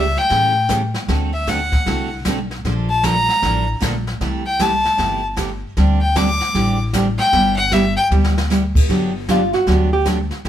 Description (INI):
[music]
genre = country, western swing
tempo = 154 BPM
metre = 4/4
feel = swing 64% on 8ths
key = unclear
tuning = A4 = 440 Hz
[part]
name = clear fiddle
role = melody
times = 0.0-8.0 s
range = E5 to D6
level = -18 LUFS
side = left 2 dB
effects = none
[part]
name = picked steel-string acoustic guitar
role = accompaniment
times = 0.0-10.5 s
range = C3 to A4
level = -21 LUFS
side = right 2 dB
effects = none
[part]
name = upright bass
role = bass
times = 0.0-10.5 s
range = G1 to A2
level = -21 LUFS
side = left 1 dB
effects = none
[part]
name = jazz brush drum kit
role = drums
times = 0.2-10.5 s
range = brushed snare drum, crash cymbal, hi-hat, kick drum, snare drum, toms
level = -23 LUFS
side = equal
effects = none
[part]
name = hollow-body jazz guitar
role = second line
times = 9.3-10.1 s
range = F4 to G4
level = -18 LUFS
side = right 2 dB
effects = none
[sound]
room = light reverb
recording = band playing live in one room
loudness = -15 LUFS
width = side -10 dB against mid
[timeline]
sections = 0.0-8.9 A section; 8.9-10.5 A section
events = fiddle solo 0.0-8.9; drum fill 8.1-8.5; hollow-body jazz guitar solo 8.9-10.5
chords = 0.0 A7/C#; 1.1 D7; 2.6 Bbmaj7; 4.2 C6; 5.8 D7sus4; 7.3 G6; 8.9 Gmaj7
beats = 0.30 0.69 | 1.08 1.47 1.86 2.25 | 2.64 3.03 3.42 3.81 | 4.20 4.59 4.99 5.38 | 5.77 6.16 6.55 6.94 | 7.33 7.72 8.11 8.50 | 8.89 9.28 9.67 10.06 | 10.45